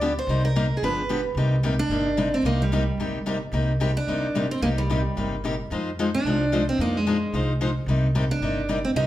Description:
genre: acoustic string swing (jazz manouche).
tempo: 221 BPM.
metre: 4/4.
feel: swing 58% on 8ths.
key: C minor.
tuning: A4 = 442 Hz.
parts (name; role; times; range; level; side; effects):
picked steel-string acoustic guitar; melody; 0.0-9.1 s; G3 to D5; -26 LUFS; right 2 dB; plate reverb.
picked steel-string acoustic guitar; accompaniment; 0.0-9.1 s; C3 to C5; -26 LUFS; left 2 dB; none.
upright bass; bass; 0.0-9.1 s; G1 to F2; -26 LUFS; equal; none.
room: wet club reverb, RT60 0.8 s.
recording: heard from further back in the room.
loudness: -21 LUFS.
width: side -14 dB against mid.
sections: 0.0-1.4 A section; 1.4-9.1 A section.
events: none.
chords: 0.3 Cm7; 0.8 G7; 1.4 Cm9; 5.7 Fm7; 7.9 Cm9.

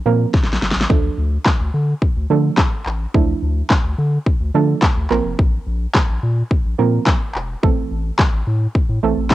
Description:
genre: dance-pop.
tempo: 107 BPM.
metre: 4/4.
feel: straight.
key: D minor.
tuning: A4 = 441 Hz.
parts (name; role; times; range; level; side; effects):
soft round pluck; accompaniment; 0.1-9.3 s; E3 to Bb4; -20 LUFS; right 7 dB; chorus.
round analog bass; bass; 0.1-9.3 s; E1 to D3; -19 LUFS; left 1 dB; sidechain pumping.
pop drum kit; drums; 0.3-9.3 s; handclaps, kick drum, snare drum; -16 LUFS; left 1 dB; cassette tape.
room: light reverb.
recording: home recording on cassette.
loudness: -15 LUFS.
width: side -15 dB against mid.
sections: 0.0-9.3 A section.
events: drum fill 0.3-0.9.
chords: 0.0 Bbsus2; 0.9 Dm; 5.1 Bbsus2; 7.6 Am.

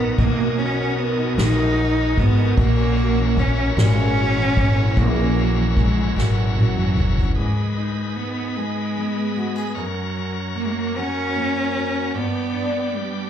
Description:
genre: six-eight pop ballad.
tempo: 50 BPM (dotted quarters).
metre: 6/8.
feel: straight.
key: unclear.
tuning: A4 = 441 Hz.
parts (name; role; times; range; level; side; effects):
warm cello; melody; 0.0-13.3 s; F#3 to D#4; -23 LUFS; right 2 dB; slapback echo, tape echo.
fingerpicked steel-string acoustic guitar; accompaniment; 0.0-13.3 s; F#2 to A#4; -25 LUFS; left 1 dB; double-tracked left and right.
bright tonewheel organ; sustained chords; 0.0-13.3 s; F#4 to B5; -30 LUFS; left 1 dB; overdrive, fast rotary speaker.
upright bass; bass; 0.0-7.3 s; F#1 to B1; -20 LUFS; equal; none.
soft-mallet drum kit; drums; 0.2-7.4 s; kick drum, ride cymbal, snare drum, toms; -24 LUFS; equal; none.
room: light reverb.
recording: live gig heard through the venue's PA, club reverb.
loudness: -18 LUFS.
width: side -9 dB against mid.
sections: 0.0-7.4 A section; 7.4-13.3 B section.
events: drum fill 6.2-7.4.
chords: 0.0 Bmaj7; 2.6 F#7; 7.4 G#m; 9.8 F#; 12.2 G.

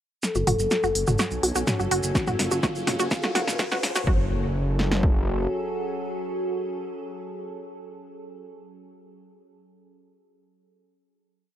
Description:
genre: melodic techno.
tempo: 125 BPM.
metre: 4/4.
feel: straight.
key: F# harmonic minor.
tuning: A4 = 440 Hz.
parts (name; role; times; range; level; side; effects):
expressive synth lead; melody; 0.2-8.3 s; E#4 to A4; -31 LUFS; left 1 dB; lush chorus, sidechain pumping, tape echo.
evolving wavetable pad; sustained chords; 0.9-8.3 s; F#3 to G#5; -35 LUFS; right 1 dB; chorus, built-in reverb, sidechain pumping.
techno drum kit; drums; 0.2-4.0 s; hi-hat, snare drum, toms; -27 LUFS; equal; none.
maracas; percussion; 0.2-4.0 s; none; -34 LUFS; right 3 dB; none.
riser and impact; sound effects; 1.5-8.3 s; none; -36 LUFS; equal; none.
wide unison pluck; arpeggios; 0.4-4.3 s; F#4; -29 LUFS; right 1 dB; sidechain pumping, analog delay.
swelling detuned saw bass; bass; 0.4-5.5 s; F#1 to C#2; -28 LUFS; equal; sidechain pumping.
techno drum kit; drums; 2.2-5.1 s; kick drum, snare drum; -24 LUFS; equal; none.
room: little or no reverb.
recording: dry, gritty hardware recording, high-pass filter.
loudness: -22 LUFS.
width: side -11 dB against mid.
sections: 0.2-4.1 build; 4.1-7.9 final chord.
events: build-up 0.2-4.1; drum fill 0.2-4.1; filter sweep on synth arpeggio sound 0.2-4.1; filter sweep 0.2-4.1; riser 1.5-4.1.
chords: 0.2 F#m.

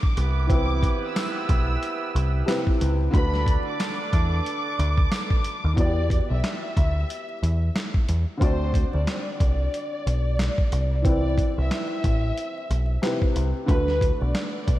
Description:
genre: hip hop, boom-bap hip-hop.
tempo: 91 BPM.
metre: 4/4.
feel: swing 59% on 16ths.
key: E minor.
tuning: A4 = 439 Hz.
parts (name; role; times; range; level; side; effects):
warm symphonic violin section; melody; 0.0-14.8 s; B4 to E6; -31 LUFS; equal; high-pass filter, low-pass filter, analog delay.
warm upright piano; accompaniment; 0.0-14.8 s; C3 to D5; -30 LUFS; left 1 dB; high-pass filter, low-pass filter.
dusty soul sampler-style drum kit; drums; 0.0-14.8 s; handclaps, hi-hat, kick drum, snare drum; -24 LUFS; equal; none.
clear horn section; stabs; 0.2-5.4 s; B3 to D5; -32 LUFS; right 6 dB; high-pass filter, low-pass filter, analog delay.
deep dub picked electric bass; bass; 0.2-14.8 s; A1 to E2; -23 LUFS; equal; none.
tambourine; percussion; 1.2-5.3 s; none; -49 LUFS; left 10 dB; none.
room: light reverb, studio reverb.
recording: vinyl crackle.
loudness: -21 LUFS.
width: side -15 dB against mid.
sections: 0.0-5.8 A section; 5.8-14.8 B section.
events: none.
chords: 0.2 Cmaj7; 3.1 Bm7/D; 5.8 Em7; 8.4 D7; 10.7 Cmaj7; 13.7 Bm7.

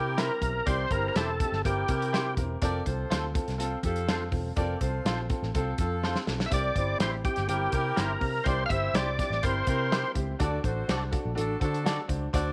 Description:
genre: uptempo 1960s-style soul.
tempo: 123 BPM.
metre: 4/4.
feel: straight.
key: unclear.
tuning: A4 = 440 Hz.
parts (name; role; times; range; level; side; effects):
overdriven tonewheel organ; melody; 0.0-2.3, 6.5-10.1 s; G4 to F5; -32 LUFS; equal; chorus vibrato.
clear saxophone section; second line; 0.0-12.5 s; C4 to D5; -38 LUFS; equal; none.
warm upright piano; accompaniment; 0.0-12.5 s; C4 to C5; -38 LUFS; equal; none.
vintage muted picked electric bass; bass; 0.0-12.5 s; E1 to D3; -34 LUFS; equal; none.
electric guitar at the edge of break-up; stabs; 0.2-12.0 s; E4 to D5; -39 LUFS; equal; ensemble chorus.
warm soul drum kit; drums; 0.2-12.5 s; hi-hat, kick drum, snare drum; -33 LUFS; equal; none.
room: light reverb, small room ambience.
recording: none.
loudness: -28 LUFS.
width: mono.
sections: 0.0-12.5 A section.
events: drum fill 6.0-6.5.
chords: 0.0 C; 2.6 F; 6.5 C; 10.4 D.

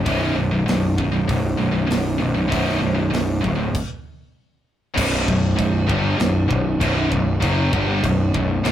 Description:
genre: heavy metal.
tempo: 98 BPM.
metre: 4/4.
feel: straight.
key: B minor.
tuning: A4 = 440 Hz.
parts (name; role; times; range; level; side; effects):
high-gain distorted guitar; riff; 0.0-8.7 s; B1 to G3; -22 LUFS; equal; distortion.
fuzz picked electric bass; bass; 0.0-8.7 s; B0 to G1; -20 LUFS; equal; overdrive.
tight metal drum kit; drums; 0.1-8.7 s; crash cymbal, hi-hat, kick drum, snare drum; -26 LUFS; right 1 dB; none.
room: moderate small room reverb, RT60 0.5 s.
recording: rough rehearsal-room recording, tube saturation.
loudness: -18 LUFS.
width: side -11 dB against mid.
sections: 0.0-5.0 A section; 5.0-8.7 B section.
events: stop 3.7-5.0; half time 5.0-8.7.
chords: 0.1 B5; 4.4 N.C.; 5.0 Bm.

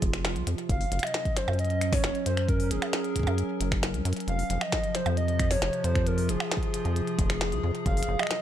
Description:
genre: IDM.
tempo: 134 BPM.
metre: 4/4.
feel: straight.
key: F phrygian.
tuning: A4 = 440 Hz.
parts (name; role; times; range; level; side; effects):
warbly nostalgic lead; melody; 0.0-8.4 s; Ab4 to F5; -32 LUFS; equal; chorus, cassette tape, tape echo.
warbly tape-like pad; sustained chords; 0.0-8.4 s; C3 to Bb4; -32 LUFS; right 1 dB; chorus, built-in reverb.
deep acid bass; bass; 0.0-8.2 s; F1 to Gb2; -28 LUFS; equal; tube saturation.
electronic kick drum; drums; 0.0-7.9 s; none; -29 LUFS; equal; small room ambience.
glitchy drum kit; drums; 0.0-8.4 s; finger snaps, hi-hat, percussion blips, snare drum; -32 LUFS; equal; small room ambience.
room: little or no reverb.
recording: none.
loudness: -25 LUFS.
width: side -11 dB against mid.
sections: 0.0-8.4 A section.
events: none.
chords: 0.0 Fm; 0.7 Gbmaj7; 4.3 Fm; 7.9 Gbmaj7.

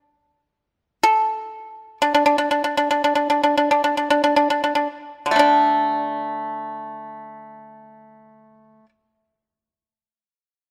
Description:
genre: chinese traditional, Chinese solo plucked strings.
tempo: 31-39 BPM.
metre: 4/4.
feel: rubato.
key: unclear.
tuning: A4 = 438 Hz.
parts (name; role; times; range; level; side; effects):
pipa; solo; 1.0-8.9 s; D3 to A4; -20 LUFS; equal; none.
room: light reverb.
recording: close, detailed microphones.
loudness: -19 LUFS.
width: mono.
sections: 0.0-5.4 A section; 5.4-10.7 B section.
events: slowing down 0.0-5.4.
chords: none.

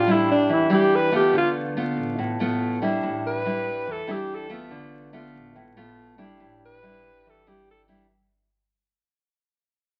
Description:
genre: bossa nova.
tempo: 142 BPM.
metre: 4/4.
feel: straight.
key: unclear.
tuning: A4 = 439 Hz.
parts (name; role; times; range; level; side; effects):
breathy alto saxophone; melody; 0.0-7.8 s; D4 to B4; -24 LUFS; equal; none.
nylon-string guitar; accompaniment; 0.0-8.1 s; A2 to F4; -27 LUFS; equal; none.
upright bass; bass; 0.0-8.0 s; A1 to E2; -43 LUFS; equal; none.
room: light reverb.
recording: very old 78 rpm record, vinyl crackle, nothing above 10.6 kHz.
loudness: -23 LUFS.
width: mono.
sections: 0.0-8.1 A section.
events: fade-out 0.0-8.1; alto saxophone solo 0.0-8.1.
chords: 0.0 A7sus4.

